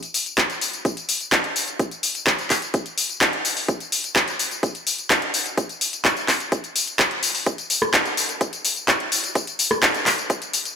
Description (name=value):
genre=progressive house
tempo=127 BPM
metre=4/4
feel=straight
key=none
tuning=none
part: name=house drum kit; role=drums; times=0.0-10.8 s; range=handclaps, hi-hat, rim click, tambourine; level=-20 LUFS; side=left 1 dB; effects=sidechain pumping on perc, sidechain pumping on hats
part: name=electronic kick drum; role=drums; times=0.4-10.4 s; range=none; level=-24 LUFS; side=equal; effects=high-pass filter on kick, high-pass filter on room
room=moderate lush hall reverb, RT60 1.9 s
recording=none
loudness=-19 LUFS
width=side -7 dB against mid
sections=0.0-10.8 A section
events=build-up 0.0-10.8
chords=none